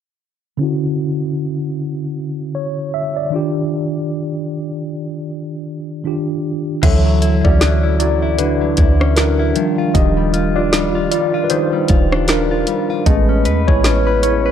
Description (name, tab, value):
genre	contemporary R&B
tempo	77 BPM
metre	4/4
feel	swing 58% on 16ths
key	unclear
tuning	A4 = 439 Hz
part	mellow tine electric piano	accompaniment	0.6-14.5 s	D3 to E5	-18 LUFS	equal	medium stereo tremolo, low-pass filter
part	dark French horn section	sustained chords	6.8-14.5 s	C#3 to B4	-25 LUFS	equal	none
part	direct-recorded clean electric guitar	arpeggios	6.8-14.5 s	D3 to B4	-22 LUFS	left 7 dB	phaser, digital delay
part	warm 808-style bass	bass	6.8-14.5 s	Eb1 to E2	-17 LUFS	equal	none
part	smooth R&B drum kit	drums	6.8-14.4 s	crash cymbal, hi-hat, kick drum, rim click, snare drum	-17 LUFS	equal	none
room	little or no reverb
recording	dark, warm production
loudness	-14 LUFS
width	side -9 dB against mid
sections	0.6-6.8 A section; 6.8-14.5 B section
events	filter sweep on tine electric piano 0.6-6.8; tine electric piano solo 6.8-14.5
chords	0.6 Dmaj9; 3.3 Ebmaj9; 6.8 Dmaj9; 9.6 Ebmaj9; 13.1 Amaj9